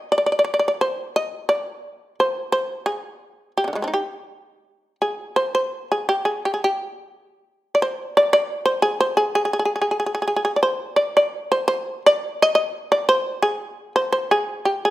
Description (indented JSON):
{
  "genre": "japanese traditional, Japanese chamber music",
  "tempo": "86 BPM",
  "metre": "2/4",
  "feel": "rubato",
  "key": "G miyako bushi",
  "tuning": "A4 = 440 Hz",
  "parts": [
    { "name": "shamisen", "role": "solo", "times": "0.0-14.9 s", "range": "C3 to Eb5", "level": "-18 LUFS", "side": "equal", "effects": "none" }
  ],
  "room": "moderate recital hall reverb, RT60 1.4 s",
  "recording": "none",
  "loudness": "-19 LUFS",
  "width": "side -15 dB against mid",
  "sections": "0.0-5.3 A section; 5.3-14.9 B section",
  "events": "none",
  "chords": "none"
}